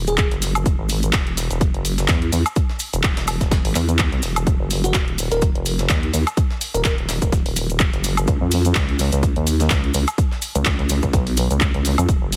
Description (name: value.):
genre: bass house.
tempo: 126 BPM.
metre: 4/4.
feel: swing 56% on 16ths.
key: Eb minor.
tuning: A4 = 440 Hz.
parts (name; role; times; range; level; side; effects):
vowel-sweep wobble bass; bass; 0.0-12.4 s; Eb1 to F2; -23 LUFS; equal; chorus, tube saturation, sidechain pumping.
bell-like FM electric piano; melody; 0.1-0.3, 4.8-6.9 s; Gb4 to Bb4; -28 LUFS; equal; chorus, dub echo.
house drum kit; drums; 0.1-12.4 s; handclaps, hi-hat, woodblock; -27 LUFS; equal; none.
cabasa; percussion; 0.1-12.4 s; none; -32 LUFS; equal; none.
electronic kick drum; drums; 0.2-12.2 s; none; -22 LUFS; equal; none.
breakbeat sampler-style drum kit; drums; 0.3-12.4 s; hi-hat, snare drum; -36 LUFS; equal; none.
room: little or no reverb.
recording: heavily compressed radio sound.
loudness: -20 LUFS.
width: mono.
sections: 0.0-12.4 A section.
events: none.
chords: 0.0 Ebm; 0.7 N.C.; 4.5 Ebm; 8.3 N.C..